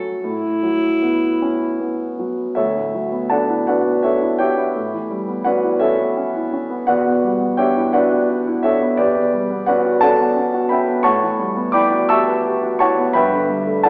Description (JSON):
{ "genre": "classical, impressionist duo for alto saxophone and grand piano", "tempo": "51-59 BPM (dotted quarters)", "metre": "6/8", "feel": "rubato", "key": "D major", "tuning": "A4 = 438 Hz", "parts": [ { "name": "warm concert grand piano", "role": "accompaniment", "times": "0.0-13.9 s", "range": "D2 to E6", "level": "-18 LUFS", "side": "equal", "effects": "none" }, { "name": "clear alto saxophone", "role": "melody", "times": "0.2-2.1 s", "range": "E4", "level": "-22 LUFS", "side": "equal", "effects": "none" } ], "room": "wet scoring stage reverb, RT60 1.9 s", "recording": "heard from further back in the room, AM radio sound", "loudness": "-18 LUFS", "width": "mono", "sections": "0.0-2.6 A section; 2.6-13.9 B section", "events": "none", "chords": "0.2 A69; 2.6 D69; 4.8 A9; 6.9 Em9; 11.0 A13; 13.2 G69" }